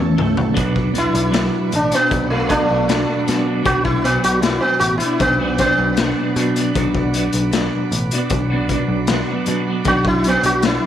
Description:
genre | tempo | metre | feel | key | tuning
psychedelic rock | 77 BPM | 4/4 | straight | B minor | A4 = 440 Hz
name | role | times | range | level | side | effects
combo organ | sustained chords | 0.0-10.9 s | E5 to D6 | -32 LUFS | right 10 dB | wide subtle chorus
twelve-string electric guitar | riff | 0.0-10.9 s | B2 to F#4 | -20 LUFS | equal | rotary speaker, double-tracked left and right
overdriven picked electric bass | bass | 0.0-10.8 s | A1 to B2 | -23 LUFS | equal | none
raw garage drum kit | drums | 0.2-10.8 s | hi-hat, kick drum, snare drum, toms | -22 LUFS | left 3 dB | none
sitar | melody | 1.0-10.8 s | A3 to F#4 | -18 LUFS | equal | tape echo
room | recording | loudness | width
light reverb | 1960s-style stereo | -15 LUFS | side -10 dB against mid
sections
0.6-10.9 A section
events
drum fill 0.0-0.6; sitar solo 0.6-10.9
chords
0.0 A; 0.6 Bm

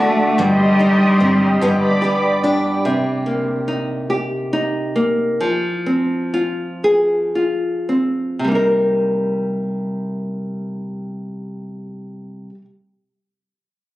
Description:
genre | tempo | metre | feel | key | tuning
six-eight pop ballad | 35-49 BPM (dotted quarters) | 6/8 | straight | C minor | A4 = 440 Hz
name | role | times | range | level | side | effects
warm cello | melody | 0.0-2.0 s | G3 to A3 | -16 LUFS | equal | none
nylon-string guitar | accompaniment | 0.0-12.6 s | G2 to Bb4 | -19 LUFS | equal | none
warm analog pad | sustained chords | 0.0-2.8 s | F#4 to Eb6 | -21 LUFS | equal | wide subtle chorus
picked steel-string acoustic guitar | arpeggios | 0.0-3.4 s | G3 to G4 | -22 LUFS | left 2 dB | ping-pong delay
vintage muted fingered electric bass | bass | 0.0-2.4 s | G1 to D2 | -29 LUFS | equal | none
room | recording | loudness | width
light reverb | recorded on a phone in the room, club reverb | -16 LUFS | side -16 dB against mid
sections
0.0-2.9 A section; 2.9-8.4 B section; 8.4-11.9 C section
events
slowing down 2.9-8.4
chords
0.4 Cm/G; 1.6 G; 2.9 Cm7; 5.4 Fm; 8.4 Cm7

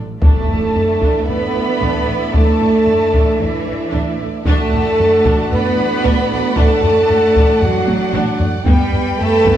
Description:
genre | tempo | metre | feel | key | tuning
cinematic, epic orchestral film score | 114 BPM | 4/4 | straight | unclear | A4 = 444 Hz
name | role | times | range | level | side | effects
warm symphonic violin section | second line | 0.0-9.6 s | D5 to B5 | -30 LUFS | left 2 dB | none
warm symphonic viola section | accompaniment | 0.0-9.6 s | E3 to A4 | -26 LUFS | right 2 dB | none
clear studio double bass section | bass | 0.0-9.5 s | G1 to A1 | -23 LUFS | right 2 dB | none
dark studio violin section | melody | 0.2-9.6 s | E5 to B5 | -29 LUFS | left 3 dB | none
bright flute section | second line | 0.2-9.6 s | E5 to B5 | -27 LUFS | equal | none
clear trombone section | sustained chords | 0.2-9.6 s | G2 to D4 | -27 LUFS | right 4 dB | none
mellow French horn section | sustained chords | 0.2-9.6 s | E4 to B4 | -17 LUFS | equal | none
warm symphonic string section | sustained chords | 0.2-9.6 s | G3 to G5 | -27 LUFS | equal | none
mellow trumpet section | stabs | 0.2-9.6 s | E5 to G5 | -29 LUFS | right 4 dB | none
rich symphonic cello section | bass | 0.2-9.6 s | E3 to B3 | -20 LUFS | right 3 dB | none
taiko ensemble | drums | 0.2-9.6 s | none | -17 LUFS | equal | none
impact | sound effects | 0.2-2.3 s | none | -27 LUFS | equal | none
room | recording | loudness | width
moderate scoring stage reverb, RT60 1.6 s | small room ambience | -12 LUFS | side -11 dB against mid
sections
0.2-9.6 A section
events
impact 0.2-2.3; drum fill 7.9-8.7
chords
0.2 Asus4; 4.5 D/A; 8.7 G

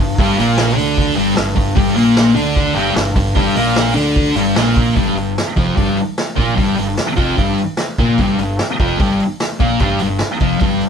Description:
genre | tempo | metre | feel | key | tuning
garage rock duo or trio | 149 BPM | 4/4 | straight | unclear | A4 = 440 Hz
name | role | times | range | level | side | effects
thick fuzz guitar | riff | 0.0-10.8 s | F2 to D4 | -15 LUFS | left 1 dB | distortion
fuzz fingered electric bass | bass | 0.0-10.8 s | F1 to D2 | -22 LUFS | right 1 dB | overdrive
vintage drum kit | drums | 0.2-10.9 s | hi-hat, kick drum, snare drum | -18 LUFS | equal | none
room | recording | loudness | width
moderate small room reverb, RT60 0.5 s | band playing live in one room | -13 LUFS | side -7 dB against mid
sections
0.0-5.0 A section; 5.0-10.9 B section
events
none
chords
0.0 G5; 5.0 Fsus24

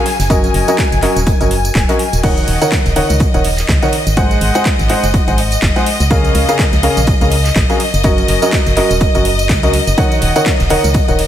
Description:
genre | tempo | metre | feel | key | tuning
piano house | 124 BPM | 4/4 | swing 57% on 16ths | Eb dorian | A4 = 441 Hz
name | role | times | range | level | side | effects
rich studio string section | sustained chords | 0.0-11.3 s | Eb5 to Ab5 | -20 LUFS | left 3 dB | sidechain pumping
clear upright piano | riff | 0.0-11.2 s | Db3 to Gb5 | -16 LUFS | equal | sidechain pumping, tape echo
big rock drum kit | drums | 0.1-11.3 s | hi-hat, snare drum | -32 LUFS | right 4 dB | none
house drum kit | drums | 0.1-11.3 s | crash cymbal, handclaps, hi-hat, ride cymbal, tambourine | -21 LUFS | right 1 dB | overdrive
organ-like FM bass | bass | 0.2-11.3 s | Eb1 to Db2 | -16 LUFS | equal | sidechain pumping
electronic kick drum | drums | 0.3-11.1 s | none | -15 LUFS | equal | overdrive
room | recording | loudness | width
light reverb, small room reverb | faint mains hum | -10 LUFS | side -11 dB against mid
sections
0.0-11.3 A section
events
none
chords
0.1 Ebm7; 4.2 Ab7; 6.1 Db6; 7.8 Gb6

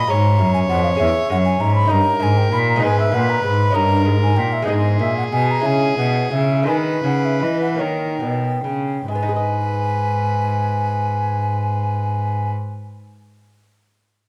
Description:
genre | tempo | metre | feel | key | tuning
classical, baroque-style sonata movement with continuo | 45-66 BPM (dotted quarters) | 6/8 | straight | G# minor | A4 = 441 Hz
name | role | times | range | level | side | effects
baroque flute | melody | 0.0-12.5 s | D#5 to B5 | -25 LUFS | equal | none
warm violin | second line | 0.0-12.5 s | G#4 to Eb5 | -27 LUFS | equal | none
lute | accompaniment | 0.0-12.8 s | E2 to D#5 | -27 LUFS | equal | none
rich cello | bass | 0.0-12.5 s | E2 to E3 | -22 LUFS | equal | none
room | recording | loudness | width
moderate recital hall reverb, RT60 1.7 s | none | -19 LUFS | mono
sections
0.0-9.1 A section; 9.1-14.3 B section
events
slowing down 3.8-9.1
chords
0.0 Gb; 1.0 C#m/E; 1.9 D#7/G; 2.8 G#m; 3.8 D#7/G; 4.7 G#m; 5.7 C#m; 6.7 G#m; 7.8 D#7; 9.1 G#m

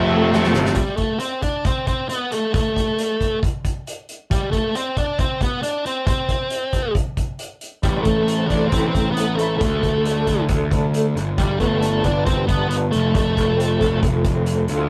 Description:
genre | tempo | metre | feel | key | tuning
quiet-loud alternative rock | 136 BPM | 4/4 | straight | unclear | A4 = 439 Hz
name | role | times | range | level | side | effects
octave-fuzz lead guitar | melody | 0.0-14.0 s | G3 to A4 | -24 LUFS | equal | distortion
string machine, cellos | sustained chords | 0.0-0.8 s | none | barely audible | none | none
biting overdriven guitar | riff | 0.0-0.8 s | F2 to C4 | -24 LUFS | equal | none
overdriven semi-hollow guitar | riff | 0.0-0.8 s | F2 to C4 | -24 LUFS | equal | none
fuzz picked electric bass | bass | 0.0-0.8, 7.8-14.9 s | F1 to F2 | -23 LUFS | equal | overdrive
loose indie drum kit | drums | 0.3-14.8 s | hi-hat, kick drum, snare drum | -26 LUFS | equal | none
electric guitar through a small old amp | arpeggios | 7.8-14.9 s | F2 to F4 | -27 LUFS | equal | tremolo
room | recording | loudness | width
light reverb | rough rehearsal-room recording, lossy compression artefacts | -20 LUFS | mono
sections
0.8-14.9 A section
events
drum fill 0.3-0.8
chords
0.0 F; 0.8 N.C.; 7.8 Am; 9.6 D5; 11.2 G; 12.9 F

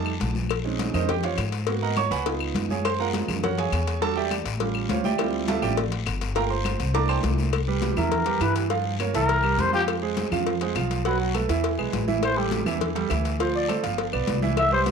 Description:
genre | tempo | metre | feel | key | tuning
Afro-Cuban jazz | 205 BPM | 4/4 | straight | C major from 7.5 s | A4 = 442 Hz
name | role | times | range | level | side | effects
clear concert grand piano | accompaniment | 0.0-14.9 s | E3 to D6 | -26 LUFS | right 9 dB | none
upright bass | bass | 0.0-14.9 s | G1 to Ab2 | -28 LUFS | left 1 dB | none
claves | percussion | 0.1-14.7 s | none | -37 LUFS | left 15 dB | none
congas | percussion | 0.1-14.9 s | none | -32 LUFS | left 2 dB | none
cowbell | percussion | 0.2-14.9 s | none | -32 LUFS | left 13 dB | none
guiro | percussion | 0.2-14.9 s | none | -38 LUFS | left 12 dB | none
growling trumpet | melody | 8.0-14.8 s | F#4 to E5 | -25 LUFS | left 3 dB | slapback echo
room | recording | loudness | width
moderate echo chamber reverb, RT60 1.3 s, small room ambience | 1960s-style stereo with parts hard left and right | -22 LUFS | side -6 dB against mid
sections
0.0-7.5 A section; 7.5-14.9 A section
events
grand piano solo 0.0-7.5; trumpet solo 7.5-14.9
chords
0.0 F7; 0.5 Bbm11; 1.7 Abm9; 2.3 Db7; 2.8 Gbmaj9; 4.0 Em7; 4.6 A7alt; 5.2 Dm11; 6.4 Gm7; 6.9 C13; 7.5 Cmaj7; 8.7 Gm7b5; 9.3 C7; 9.9 Fm; 11.1 B5; 11.6 E; 12.2 A5; 13.4 Dm7; 14.0 G7

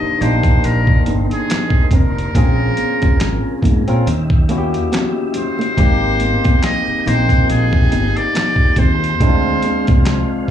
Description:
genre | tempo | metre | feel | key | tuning
R&B, neo-soul | 70 BPM | 4/4 | swing 55% on 16ths | unclear | A4 = 443 Hz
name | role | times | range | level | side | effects
trumpet with metal mute | melody | 0.0-10.5 s | Ab4 to Eb5 | -20 LUFS | equal | slapback echo
barky tine electric piano | accompaniment | 0.0-10.5 s | Ab3 to G5 | -20 LUFS | left 2 dB | wide subtle chorus, slapback echo
tonewheel organ | sustained chords | 0.0-10.5 s | Bb2 to G5 | -29 LUFS | right 1 dB | slow rotary speaker, chorus vibrato
fingered electric bass | bass | 0.0-10.2 s | F1 to Bb2 | -17 LUFS | equal | none
nylon-string guitar | second line | 0.2-10.0 s | Ab3 to Eb4 | -25 LUFS | right 4 dB | slapback echo
boom bap sampler-style drum kit | drums | 0.2-10.5 s | handclaps, hi-hat, kick drum, snare drum | -15 LUFS | equal | none
congas | percussion | 0.2-10.3 s | none | -29 LUFS | right 4 dB | none
room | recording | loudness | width
light reverb | live gig heard through the venue's PA, club reverb | -13 LUFS | side -10 dB against mid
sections
0.0-10.5 A section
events
none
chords
0.0 Cm9; 2.3 Bbm9; 4.1 Eb7b9; 5.8 Abmaj9; 9.2 Dm7b5

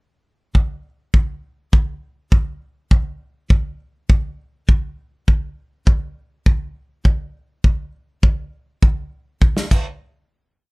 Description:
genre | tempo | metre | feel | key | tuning
acoustic pop | 102 BPM | 4/4 | straight | none | none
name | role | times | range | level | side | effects
natural country drum kit | drums | 0.5-9.9 s | crash cymbal, kick drum, snare drum | -14 LUFS | equal | none
room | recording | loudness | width
little or no reverb | rough home demo mix, lossy compression artefacts | -17 LUFS | side -29 dB against mid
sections
0.5-10.0 verse; 10.0-10.7 final hit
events
drum fill 9.4-10.0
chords
none

